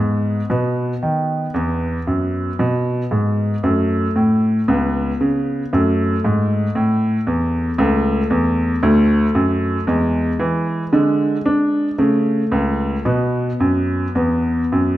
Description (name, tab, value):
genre	classical-period piano sonatina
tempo	115 BPM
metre	4/4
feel	rubato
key	A major from 7.8 s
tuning	A4 = 440 Hz
part	clear baby grand piano	solo	0.0-15.0 s	C#2 to D4	-16 LUFS	equal	none
room	wet recital hall reverb, RT60 1.4 s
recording	dark, warm production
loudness	-16 LUFS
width	side -14 dB against mid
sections	0.0-15.0 A section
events	none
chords	0.5 B; 1.5 E; 3.6 F#m; 4.7 Bsus2/C#; 5.7 F#m; 7.8 A/C#; 8.8 D; 9.9 E; 10.9 N.C.; 12.0 A/C#; 13.1 B5; 14.2 E5